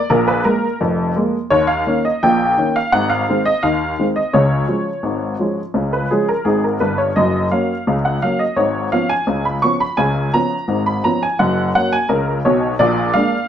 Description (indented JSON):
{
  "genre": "ragtime piano",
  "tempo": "85 BPM",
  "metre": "2/4",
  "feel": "straight",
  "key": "unclear",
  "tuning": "A4 = 441 Hz",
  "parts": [
    { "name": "honky-tonk upright piano", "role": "solo", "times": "0.0-13.5 s", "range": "E#1 to C#6", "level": "-15 LUFS", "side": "equal", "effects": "none" }
  ],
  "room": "moderate large studio reverb, RT60 1.0 s",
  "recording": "band playing live in one room",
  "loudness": "-15 LUFS",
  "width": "side -9 dB against mid",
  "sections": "0.0-13.5 A section",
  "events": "none",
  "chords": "0.0 A#5; 1.5 D#5; 2.9 G#; 4.3 C#; 7.2 F#; 8.6 C#7/G#; 11.4 F#; 12.8 A#7"
}